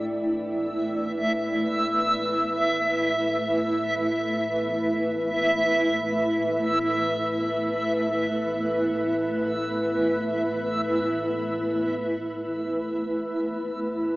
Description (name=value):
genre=dark ambient drone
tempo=free time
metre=none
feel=none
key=unclear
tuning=A4 = 440 Hz
part: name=granular cloud pad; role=sustained chords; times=0.0-14.2 s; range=A3 to G5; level=-25 LUFS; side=equal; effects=built-in reverb, shimmer reverb
part: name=deep rumbling drone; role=drone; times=0.0-14.2 s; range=A1 to A2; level=-43 LUFS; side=equal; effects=built-in reverb
part: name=backwards swelling texture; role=texture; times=0.7-12.4 s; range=E5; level=-27 LUFS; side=equal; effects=built-in reverb, shimmer reverb
room=wet huge ambient reverb, RT60 8.6 s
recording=AM radio sound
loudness=-23 LUFS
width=side -19 dB against mid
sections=0.0-12.4 A section; 12.4-14.2 B section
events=none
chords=0.0 A5